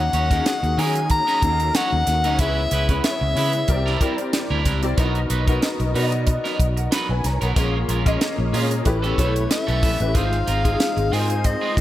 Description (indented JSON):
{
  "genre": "polished 1980s jazz-funk pop",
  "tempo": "93 BPM",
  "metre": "4/4",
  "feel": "swing 54% on 16ths",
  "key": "Eb minor",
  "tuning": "A4 = 439 Hz",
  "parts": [
    { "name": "warm soprano saxophone", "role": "melody", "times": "0.0-4.3, 9.2-11.8 s", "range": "C#5 to Bb5", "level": "-23 LUFS", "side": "left 2 dB", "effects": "none" },
    { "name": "clear grand piano", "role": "accompaniment", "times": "0.0-11.8 s", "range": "Ab3 to A#5", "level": "-25 LUFS", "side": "left 2 dB", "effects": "ensemble chorus" },
    { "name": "electric guitar at the edge of break-up", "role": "riff", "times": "0.0-11.8 s", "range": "Gb3 to Db5", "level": "-28 LUFS", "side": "right 4 dB", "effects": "lush chorus" },
    { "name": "vintage muted fingered electric bass", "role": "bass", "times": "0.0-11.8 s", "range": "Ab1 to Eb3", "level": "-23 LUFS", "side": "equal", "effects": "none" },
    { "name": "tight funk drum kit", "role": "drums", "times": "0.1-11.8 s", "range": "hi-hat, kick drum, snare drum", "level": "-23 LUFS", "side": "equal", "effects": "none" }
  ],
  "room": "light reverb",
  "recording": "none",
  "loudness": "-18 LUFS",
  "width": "side -14 dB against mid",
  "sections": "0.0-11.8 A section",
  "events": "none",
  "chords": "0.0 Ebm7; 2.4 Dbm7; 3.7 C9; 5.0 Bmaj7; 7.6 Bbm7; 8.9 A9; 10.2 Ab6"
}